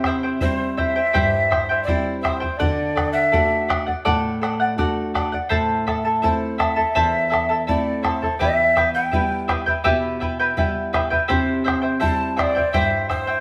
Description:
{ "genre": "andean folk, Andean ensemble", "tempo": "83 BPM", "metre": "4/4", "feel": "straight", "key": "unclear", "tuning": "A4 = 441 Hz", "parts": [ { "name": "charango", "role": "accompaniment", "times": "0.0-13.4 s", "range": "E4 to A5", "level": "-24 LUFS", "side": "equal", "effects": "none" }, { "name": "nylon-string guitar", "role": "accompaniment", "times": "0.0-13.4 s", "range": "E2 to F#4", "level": "-28 LUFS", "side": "equal", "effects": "none" }, { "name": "bombo", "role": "percussion", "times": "0.0-13.3 s", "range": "none", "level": "-28 LUFS", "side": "equal", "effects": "none" }, { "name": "mellow quena", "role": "melody", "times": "0.4-13.4 s", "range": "C5 to A5", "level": "-24 LUFS", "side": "equal", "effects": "none" } ], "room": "moderate stone room reverb, RT60 1.0 s", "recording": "band playing live in one room", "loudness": "-20 LUFS", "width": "mono", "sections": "0.0-13.4 A section", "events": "none", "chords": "0.0 C; 2.6 D; 5.5 Am; 8.4 Em; 11.3 C", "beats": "0.41 1.14 1.87 | 2.60 3.33 4.06 4.78 | 5.51 6.24 6.96 7.68 | 8.41 9.13 9.85 10.57 | 11.29 12.02 12.73" }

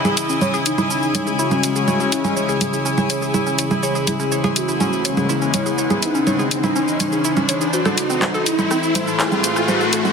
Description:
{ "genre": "melodic techno", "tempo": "123 BPM", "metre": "4/4", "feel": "straight", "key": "C# harmonic minor", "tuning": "A4 = 435 Hz", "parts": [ { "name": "fat analog lead", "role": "melody", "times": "0.0-10.1 s", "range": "D#4 to A4", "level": "-25 LUFS", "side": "equal", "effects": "analog chorus, dub echo" }, { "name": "deep dark ambient pad", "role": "sustained chords", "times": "0.0-10.1 s", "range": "C#3 to G#5", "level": "-27 LUFS", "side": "equal", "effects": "chorus, built-in reverb" }, { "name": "riser", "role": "sound effects", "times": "0.0-10.1 s", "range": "none", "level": "-26 LUFS", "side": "right 1 dB", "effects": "none" }, { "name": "rich chamber string section", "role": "texture", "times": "0.0-10.1 s", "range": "A3 to C6", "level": "-25 LUFS", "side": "left 2 dB", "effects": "none" }, { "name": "woody wave-folded pluck", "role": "arpeggios", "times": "0.1-10.1 s", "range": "C4 to C#5", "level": "-25 LUFS", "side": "left 1 dB", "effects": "chorus, vintage 12-bit sampler grit, ping-pong delay" }, { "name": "house drum kit", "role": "drums", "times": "0.1-10.1 s", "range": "congas, handclaps, hi-hat, rim click, shaker", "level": "-21 LUFS", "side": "right 2 dB", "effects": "none" }, { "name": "brassy analog pad", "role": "stabs", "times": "1.1-10.1 s", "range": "A2 to C#4", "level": "-25 LUFS", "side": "left 5 dB", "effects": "lush chorus, ping-pong delay" } ], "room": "moderate huge ambient reverb, RT60 5.9 s", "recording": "dense, heavily limited modern master, high-pass filter", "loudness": "-16 LUFS", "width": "side -6 dB against mid", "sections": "0.0-10.1 A section", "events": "build-up 0.0-10.1; riser 0.0-10.1; filter sweep on analog synth lead 0.0-10.1; filter sweep on analog synth pad 0.0-10.1", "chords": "0.0 C#m; 7.7 Am", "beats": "0.41 0.90 1.39 | 1.88 2.37 2.85 3.34 | 3.83 4.32 4.81 5.29 | 5.78 6.27 6.76 7.25 | 7.73 8.22 8.71 9.20 | 9.68" }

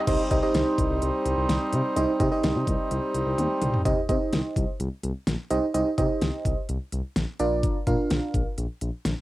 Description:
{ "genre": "synth-pop", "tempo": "127 BPM", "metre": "4/4", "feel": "straight", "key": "C minor", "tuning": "A4 = 444 Hz", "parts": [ { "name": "hand-pumped harmonium", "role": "sustained chords", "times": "0.0-3.8 s", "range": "G3 to Eb4", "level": "-27 LUFS", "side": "right 1 dB", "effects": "cassette tape" }, { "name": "FM electric piano", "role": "accompaniment", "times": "0.1-8.5 s", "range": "D4 to F5", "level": "-26 LUFS", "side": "right 2 dB", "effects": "chorus, cassette tape" }, { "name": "smooth gliding synth bass", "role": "bass", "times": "0.1-9.1 s", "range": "Bb1 to C3", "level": "-28 LUFS", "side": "left 1 dB", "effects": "tube saturation" }, { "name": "pop drum kit", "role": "drums", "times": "0.1-9.2 s", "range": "crash cymbal, hi-hat, kick drum, snare drum, toms", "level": "-27 LUFS", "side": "left 1 dB", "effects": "none" } ], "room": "moderate small room ambience, RT60 0.5 s", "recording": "home recording on cassette", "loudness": "-23 LUFS", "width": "side -16 dB against mid", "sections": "0.1-3.9 A section; 3.9-9.2 B section", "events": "drum fill 3.4-3.9", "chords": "0.1 Cm; 7.4 Bb", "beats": "| 0.07 0.55 1.02 1.49 | 1.96 2.44 2.91 3.38 | 3.85 4.33 4.80 5.27 | 5.74 6.22 6.69 7.16 | 7.63 8.11 8.58 9.05" }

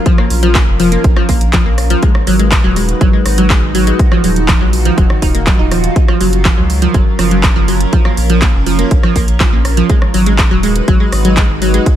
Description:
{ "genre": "progressive house", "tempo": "122 BPM", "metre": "4/4", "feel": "straight", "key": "G# dorian", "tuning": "A4 = 440 Hz", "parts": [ { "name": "evolving wavetable pad", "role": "sustained chords", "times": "0.0-12.0 s", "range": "D#3 to B4", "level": "-20 LUFS", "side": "left 1 dB", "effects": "chorus, built-in reverb, phaser, sidechain pumping" }, { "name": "glassy wavetable pluck", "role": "arpeggios", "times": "0.1-11.8 s", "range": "E#3 to D#4", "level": "-15 LUFS", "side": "right 1 dB", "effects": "chorus, sidechain pumping, digital delay" }, { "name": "electronic kick drum", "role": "drums", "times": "0.1-12.0 s", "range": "none", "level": "-11 LUFS", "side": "equal", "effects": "overdrive" }, { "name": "house drum kit", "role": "drums", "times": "0.1-12.0 s", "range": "handclaps, hi-hat, rim click", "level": "-19 LUFS", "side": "equal", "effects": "overdrive" }, { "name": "saturated sub bass", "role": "bass", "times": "0.3-11.8 s", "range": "D#1 to C#2", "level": "-15 LUFS", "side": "equal", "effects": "tube saturation, sidechain pumping" } ], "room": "little or no reverb", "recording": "none", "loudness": "-9 LUFS", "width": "side -11 dB against mid", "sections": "0.0-12.0 A section", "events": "none", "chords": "0.1 A#m; 2.0 G#m7; 4.0 D#madd9; 6.0 F#maj7; 7.9 A#m; 9.9 G#m7", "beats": "| 0.06 0.55 1.04 1.53 | 2.03 2.52 3.01 3.50 | 3.99 4.49 4.98 5.47 | 5.96 6.45 6.94 7.44 | 7.93 8.42 8.91 9.40 | 9.89 10.39 10.88 11.37 | 11.86" }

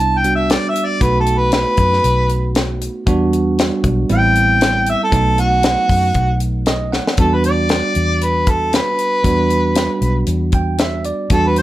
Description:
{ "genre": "straight-eighth soul blues", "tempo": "116 BPM", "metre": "4/4", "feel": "swing 55% on 16ths", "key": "E minor", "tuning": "A4 = 440 Hz", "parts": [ { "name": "warm harmonica", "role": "melody", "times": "0.0-11.6 s", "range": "F#4 to A5", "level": "-16 LUFS", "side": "equal", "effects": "overdrive" }, { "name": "bell-like tine electric piano", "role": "accompaniment", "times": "0.0-11.6 s", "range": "F#3 to G5", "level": "-20 LUFS", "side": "right 3 dB", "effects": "none" }, { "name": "vintage muted fingered electric bass", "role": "bass", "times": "0.0-11.6 s", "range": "A1 to F#2", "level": "-18 LUFS", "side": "left 1 dB", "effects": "none" }, { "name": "tight funk drum kit", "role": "drums", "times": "0.2-11.6 s", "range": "hi-hat, kick drum, snare drum", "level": "-18 LUFS", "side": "left 1 dB", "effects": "none" } ], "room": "light reverb", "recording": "none", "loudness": "-13 LUFS", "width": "side -15 dB against mid", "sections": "0.0-7.2 A section; 7.2-11.6 B section", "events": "tine electric piano fill 6.4-7.2, 10.3-11.3; drum fill 6.9; harmonica solo 7.2-11.6", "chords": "0.0 Cmaj7; 1.0 B7; 3.1 Em9; 4.1 Am9; 5.1 B7; 7.2 Em9", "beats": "0.49 | 1.01 1.52 2.04 2.56 | 3.07 3.59 4.10 4.62 | 5.13 5.64 6.16 6.67 | 7.19 7.70 8.22 8.73 | 9.25 9.76 10.28 10.79 | 11.31" }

